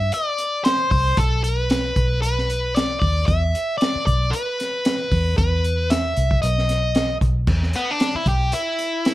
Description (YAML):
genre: straight-eighth soul blues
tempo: 114 BPM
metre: 4/4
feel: swing 55% on 16ths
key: E minor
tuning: A4 = 440 Hz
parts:
  - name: biting overdriven guitar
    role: melody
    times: 0.0-9.1 s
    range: B3 to E5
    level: -22 LUFS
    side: left 1 dB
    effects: plate reverb
  - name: vintage muted fingered electric bass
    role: bass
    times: 0.0-8.5 s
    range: B1 to G2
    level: -21 LUFS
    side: equal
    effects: none
  - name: crunchy breakbeat drum kit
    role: drums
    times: 0.1-9.1 s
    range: crash cymbal, hi-hat, kick drum, snare drum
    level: -23 LUFS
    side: equal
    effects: none
room: light reverb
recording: none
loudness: -18 LUFS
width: side -16 dB against mid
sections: 0.0-7.5 A section; 7.5-9.1 B section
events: overdriven electric guitar solo 7.5-9.1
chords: 0.0 C5; 1.2 N.C.; 3.3 E5; 6.4 B; 7.5 E5